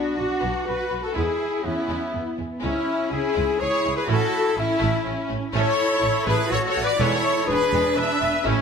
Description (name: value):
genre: cinematic, heroic adventure film score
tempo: 123 BPM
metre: 3/4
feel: straight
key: unclear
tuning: A4 = 440 Hz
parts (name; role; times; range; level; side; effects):
- warm studio violin section; melody; 0.0-8.6 s; D4 to E5; -32 LUFS; left 4 dB; none
- bright clarinet; second line; 0.0-8.6 s; B3 to B4; -33 LUFS; left 2 dB; none
- mellow hollow concert flute; second line; 0.0-8.6 s; D5 to E6; -33 LUFS; left 1 dB; none
- warm oboe; second line; 0.0-8.6 s; B3 to B4; -33 LUFS; right 1 dB; none
- dark studio viola section; accompaniment; 0.0-8.6 s; D4 to E5; -31 LUFS; right 1 dB; none
- dark French horn section; sustained chords; 0.0-8.6 s; D4 to E5; -26 LUFS; left 7 dB; none
- clear trumpet section; stabs; 0.0-8.6 s; D4 to E5; -30 LUFS; right 3 dB; none
- dark symphonic cello section; bass; 0.0-8.6 s; B3 to F#4; -29 LUFS; right 1 dB; none
- warm symphonic violin section; second line; 0.2-8.6 s; G#3 to E4; -35 LUFS; left 2 dB; none
- warm symphonic double bass section; bass; 0.2-8.5 s; E1 to E2; -28 LUFS; right 4 dB; none
- clear trombone section; sustained chords; 1.2-8.6 s; G#2 to C#4; -34 LUFS; right 4 dB; none
room: moderate scoring stage reverb, RT60 1.9 s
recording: none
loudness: -20 LUFS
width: side -6 dB against mid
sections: 0.0-8.6 A section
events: none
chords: 0.0 Bm; 1.2 E; 2.6 C#m; 4.1 A; 7.0 E